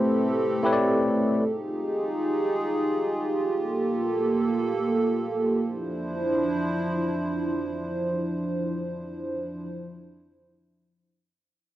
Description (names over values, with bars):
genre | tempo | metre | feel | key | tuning
amapiano | free time | none | none | D minor | A4 = 440 Hz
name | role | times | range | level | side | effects
tine electric piano | accompaniment | 0.0-1.5 s | A3 to D5 | -23 LUFS | left 1 dB | medium stereo tremolo, cassette tape
hollow soft pad | sustained chords | 0.0-9.7 s | F3 to C5 | -25 LUFS | right 1 dB | chorus, cassette tape
room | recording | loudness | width
moderate studio reverb, RT60 0.6 s | home recording on cassette | -24 LUFS | side -14 dB against mid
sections
0.0-5.6 A section; 5.6-9.9 B section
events
none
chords
0.0 Am9; 1.4 Fm9; 3.5 Gm9; 5.6 Dm9